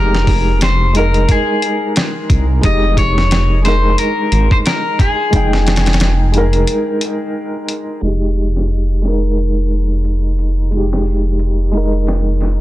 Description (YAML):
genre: trip hop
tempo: 89 BPM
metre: 4/4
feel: swing 57% on 16ths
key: F minor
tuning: A4 = 440 Hz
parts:
  - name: electric guitar at the edge of break-up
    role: melody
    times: 0.0-7.3 s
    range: Ab4 to Eb5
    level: -19 LUFS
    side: left 3 dB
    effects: tape echo
  - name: felt-muted upright piano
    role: accompaniment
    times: 0.0-12.6 s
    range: Ab3 to G5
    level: -19 LUFS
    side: equal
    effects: tremolo, tape echo
  - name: dark detuned saw bass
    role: bass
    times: 0.0-12.6 s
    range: F1 to C2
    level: -14 LUFS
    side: equal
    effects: none
  - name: dusty soul sampler-style drum kit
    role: drums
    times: 0.1-12.6 s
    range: hi-hat, kick drum, snare drum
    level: -16 LUFS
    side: equal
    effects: high-pass filter on hats, high-pass filter on snare, high-pass filter on kick
room: little or no reverb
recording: dense, heavily limited modern master, low-pass filter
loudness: -12 LUFS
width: side -15 dB against mid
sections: 0.0-8.0 A section; 8.0-12.6 B section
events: break 6.7-8.0; filter sweep 8.0-12.6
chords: 0.0 Fm9